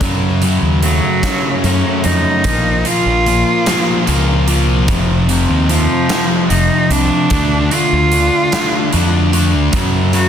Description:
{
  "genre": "quiet-loud alternative rock",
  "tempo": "49 BPM (dotted quarters)",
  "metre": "6/8",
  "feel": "straight",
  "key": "unclear",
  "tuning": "A4 = 440 Hz",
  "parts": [
    { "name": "electric guitar through a small old amp", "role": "arpeggios", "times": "0.0-2.5 s", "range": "Gb2 to Db4", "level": "-25 LUFS", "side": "right 2 dB", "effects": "phaser, slapback echo" },
    { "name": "cranked stack guitar", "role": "riff", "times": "0.0-10.3 s", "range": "F2 to D4", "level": "-16 LUFS", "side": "left 2 dB", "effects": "overdrive" },
    { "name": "fuzz fingered electric bass", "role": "bass", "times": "0.0-10.3 s", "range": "F1 to Gb2", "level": "-16 LUFS", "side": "equal", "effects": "overdrive" },
    { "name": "big rock drum kit", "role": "drums", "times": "0.0-10.3 s", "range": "hi-hat, kick drum, snare drum", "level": "-21 LUFS", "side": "right 1 dB", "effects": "none" },
    { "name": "clear cello", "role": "melody", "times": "0.8-10.3 s", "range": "F3 to Gb4", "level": "-16 LUFS", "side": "right 2 dB", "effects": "slapback echo" }
  ],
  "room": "small room ambience",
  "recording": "dense, heavily limited modern master",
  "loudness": "-11 LUFS",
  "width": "side -8 dB against mid",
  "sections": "0.0-10.3 A section",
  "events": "cello solo 0.0-10.3",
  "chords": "0.0 Gbm; 2.4 Bbm; 4.9 F5; 7.3 Dm; 9.7 Gb5",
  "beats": "| 0.01 1.23 | 2.45 3.67 | 4.88 6.10 | 7.31 8.52 | 9.73"
}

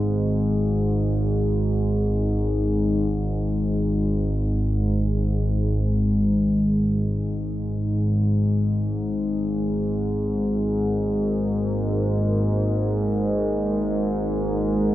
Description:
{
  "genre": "dark ambient drone",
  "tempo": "free time",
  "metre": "none",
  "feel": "none",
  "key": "unclear",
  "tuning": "A4 = 439 Hz",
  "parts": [
    { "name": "analog drone", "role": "drone", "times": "0.0-14.9 s", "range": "G#1 to G#2", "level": "-21 LUFS", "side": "equal", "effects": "chorus" },
    { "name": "deep dark ambient pad", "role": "sustained chords", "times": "10.9-14.9 s", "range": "G#3 to A#4", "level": "-28 LUFS", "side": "right 1 dB", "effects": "chorus, built-in reverb" }
  ],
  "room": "wet huge ambient reverb, RT60 7.7 s",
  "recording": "worn, warbling old tape, cassette tape, warbly pitch drift",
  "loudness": "-20 LUFS",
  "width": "side -14 dB against mid",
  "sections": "0.0-14.9 A section",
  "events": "none",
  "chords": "0.0 G#5",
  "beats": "free time"
}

